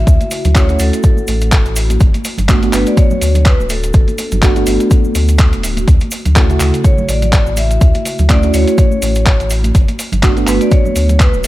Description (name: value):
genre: deep house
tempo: 124 BPM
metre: 4/4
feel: swing 56% on 16ths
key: D major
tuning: A4 = 440 Hz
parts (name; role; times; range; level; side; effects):
- vibraphone with medium hard mallets; melody; 0.0-11.5 s; A4 to E5; -22 LUFS; left 1 dB; digital delay
- mellow FM electric piano; stabs; 0.0-11.5 s; C#3 to F#4; -18 LUFS; right 1 dB; chorus, phaser, sidechain pumping, digital delay
- warm sub bass; bass; 0.0-11.5 s; D1 to D2; -14 LUFS; equal; sidechain pumping
- dusty soul sampler-style drum kit; drums; 0.1-11.5 s; handclaps, hi-hat; -20 LUFS; equal; none
- electronic kick drum; drums; 0.1-11.3 s; none; -10 LUFS; equal; overdrive
- cabasa; percussion; 0.1-11.5 s; none; -27 LUFS; right 1 dB; none
- congas; percussion; 0.2-11.4 s; none; -25 LUFS; right 4 dB; none
room: little or no reverb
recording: none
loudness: -10 LUFS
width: side -16 dB against mid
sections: 0.0-11.5 A section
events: none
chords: 0.0 Dmaj9; 2.0 Gmaj9; 5.9 Dmaj9; 9.7 Gmaj9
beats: | 0.07 0.55 1.04 1.52 | 2.01 2.49 2.97 3.46 | 3.94 4.42 4.91 5.39 | 5.88 6.36 6.84 7.33 | 7.81 8.30 8.78 9.26 | 9.75 10.23 10.71 11.20